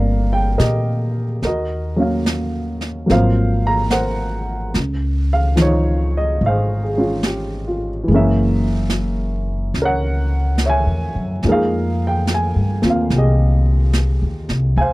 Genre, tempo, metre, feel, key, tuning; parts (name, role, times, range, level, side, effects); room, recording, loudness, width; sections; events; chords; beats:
jazz ballad; 72 BPM; 4/4; swing 67% on 8ths; A4 = 441 Hz
warm baby grand piano; accompaniment; 0.0-14.9 s; Eb3 to Bb5; -19 LUFS; equal
upright bass; bass; 0.0-14.9 s; F#1 to Bb2; -18 LUFS; equal
jazz brush drum kit; drums; 0.6-14.9 s; brushed snare drum, hi-hat, snare drum; -24 LUFS; right 1 dB
little or no reverb; dry, close 1970s-style studio recording; -16 LUFS; side -20 dB against mid
0.0-14.9 A section
0.0 Cm9; 1.4 Ebm7; 3.1 Ab13; 4.7 Dbmaj9; 8.1 F#9; 11.4 Fm11
0.58 | 1.42 2.25 3.08 3.91 | 4.75 5.58 6.41 7.24 | 8.07 8.90 9.74 10.59 | 11.43 12.27 13.11 13.94 | 14.78